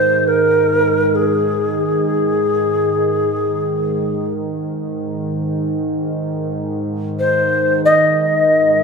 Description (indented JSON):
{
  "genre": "world meditative, free-time meditation music",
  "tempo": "free time",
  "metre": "none",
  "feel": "none",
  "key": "Ab major pentatonic",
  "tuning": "A4 = 440 Hz",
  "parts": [
    { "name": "mellow Native American-style cedar flute", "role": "melody", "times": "0.0-8.8 s", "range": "Ab4 to Eb5", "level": "-14 LUFS", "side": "left 1 dB", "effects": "none" },
    { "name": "deep dark ambient pad", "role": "drone", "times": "0.0-8.8 s", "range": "Ab2 to Eb3", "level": "-20 LUFS", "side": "right 2 dB", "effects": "chorus, built-in reverb" }
  ],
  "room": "wet lush hall reverb, RT60 1.5 s, small room ambience",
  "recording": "none",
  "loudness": "-15 LUFS",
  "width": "side -4 dB against mid",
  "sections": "0.0-8.8 A section",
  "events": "none",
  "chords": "none",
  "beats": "free time"
}